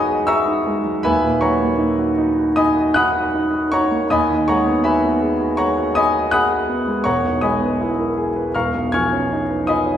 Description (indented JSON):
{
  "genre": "classical, impressionist solo piano",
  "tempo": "80 BPM",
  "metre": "4/4",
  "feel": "rubato",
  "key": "unclear",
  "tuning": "A4 = 440 Hz",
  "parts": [
    { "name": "warm grand piano", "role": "solo", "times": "0.0-10.0 s", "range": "E1 to G#6", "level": "-16 LUFS", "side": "equal", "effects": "none" }
  ],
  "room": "wet recital hall reverb, RT60 1.6 s",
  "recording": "recorded in a church or concert hall",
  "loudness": "-16 LUFS",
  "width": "side -10 dB against mid",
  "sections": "0.0-10.0 A section",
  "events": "none",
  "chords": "0.0 Emaj9; 1.1 D#m7; 7.1 Emaj7#11; 8.5 C#9/E"
}